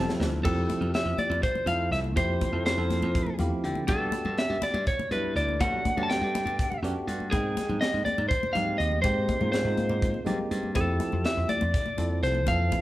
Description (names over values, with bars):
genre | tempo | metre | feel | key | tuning
electric jazz fusion | 244 BPM (eighths) | 7/8 | straight | F major | A4 = 437 Hz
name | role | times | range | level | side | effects
bell-like tine electric piano | accompaniment | 0.0-12.8 s | E3 to A5 | -33 LUFS | right 1 dB | medium stereo tremolo
slap bass | bass | 0.0-12.7 s | C2 to D3 | -30 LUFS | equal | none
crisp fusion drum kit | drums | 0.1-12.8 s | crash cymbal, hi-hat, kick drum, snare drum | -32 LUFS | equal | none
lightly driven lead guitar | melody | 0.4-12.8 s | Ab4 to A5 | -28 LUFS | equal | none
congas | percussion | 0.5-12.8 s | none | -36 LUFS | left 3 dB | none
room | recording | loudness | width
wet large studio reverb, RT60 1.5 s | band playing live in one room | -24 LUFS | side -16 dB against mid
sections
0.5-12.8 A section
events
drum fill 0.0-0.5; tine electric piano fill 3.1-3.9, 6.6-7.3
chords
0.5 Fmaj9; 3.9 Gmaj9; 7.3 Abmaj9; 10.8 Fmaj9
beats
0.20 | 0.45 0.69 0.94 1.19 1.43 1.68 1.92 | 2.17 2.41 2.66 2.90 3.15 3.40 3.64 | 3.89 4.13 4.38 4.62 4.87 5.11 5.36 | 5.61 5.85 6.10 6.34 6.59 6.83 7.08 | 7.32 7.57 7.81 8.06 8.30 8.55 8.80 | 9.04 9.29 9.53 9.78 10.02 10.27 10.51 | 10.76 11.00 11.25 11.49 11.74 11.98 12.23 | 12.47 12.72